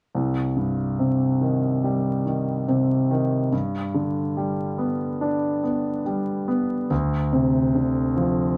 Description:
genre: pop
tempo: 71 BPM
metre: 4/4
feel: straight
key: C harmonic minor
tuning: A4 = 439 Hz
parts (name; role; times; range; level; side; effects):
- warm concert grand piano; accompaniment; 0.1-8.6 s; C2 to D4; -23 LUFS; equal; none
room: wet club reverb, RT60 0.9 s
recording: vinyl crackle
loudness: -23 LUFS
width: mono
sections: 0.1-8.6 A section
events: none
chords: 0.1 Cm; 3.5 G; 6.9 Dm7

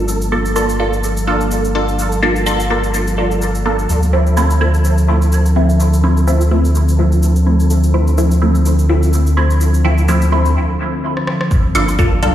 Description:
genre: dub techno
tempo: 126 BPM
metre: 4/4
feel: swing 56% on 16ths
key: G minor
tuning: A4 = 445 Hz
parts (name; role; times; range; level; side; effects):
- warbly tape-like pad; sustained chords; 0.0-12.3 s; D3 to C4; -20 LUFS; left 1 dB; chorus, built-in reverb, sidechain pumping
- warm sub bass; bass; 0.0-12.3 s; G1 to D2; -14 LUFS; equal; tube saturation, sidechain pumping
- flickering grainy texture; texture; 0.0-10.6 s; A4; -29 LUFS; right 3 dB; built-in reverb, sidechain pumping
- deep house drum kit; drums; 0.1-12.3 s; cabasa, hi-hat, rim click; -28 LUFS; equal; small room reverb
- filtered dub chord stab; stabs; 0.3-12.3 s; F3 to A4; -18 LUFS; equal; phaser, sidechain pumping, dub echo
- electronic kick drum; drums; 11.5-12.1 s; none; -14 LUFS; equal; small room reverb
- woodblock and congas; percussion; 11.5-12.3 s; none; -26 LUFS; right 2 dB; sidechain pumping on perc, small room reverb
room: moderate lush hall reverb, RT60 1.9 s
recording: played on a big sound system in a bare room, large studio reverb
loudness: -12 LUFS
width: side -11 dB against mid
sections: 0.0-11.5 A section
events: filter sweep on ambient pad 0.0-11.5; break 10.6-11.5; drum fill 11.2-11.5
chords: 0.0 Gm7; 3.9 Dm7; 11.5 Gm7

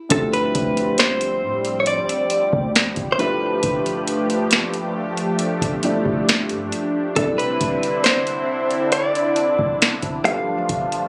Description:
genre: contemporary R&B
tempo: 68 BPM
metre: 4/4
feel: straight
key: D dorian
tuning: A4 = 440 Hz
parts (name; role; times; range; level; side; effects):
- direct-recorded clean electric guitar; melody; 0.1-11.1 s; A4 to F5; -23 LUFS; equal; none
- felt-muted upright piano; accompaniment; 0.1-11.1 s; C3 to D5; -30 LUFS; equal; none
- lush unison pad; sustained chords; 0.1-11.1 s; D3 to G4; -27 LUFS; equal; chorus, phaser
- warm 808-style bass; bass; 0.1-11.1 s; G1 to A2; -32 LUFS; equal; none
- booming analog drum machine; drums; 0.1-11.1 s; hi-hat, kick drum, snare drum; -24 LUFS; equal; none
room: little or no reverb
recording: recorded on a phone in the room, club reverb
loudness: -20 LUFS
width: mono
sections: 0.1-11.1 A section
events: none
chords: 0.1 Dm11; 3.2 G13; 7.2 Cadd9; 10.2 G9

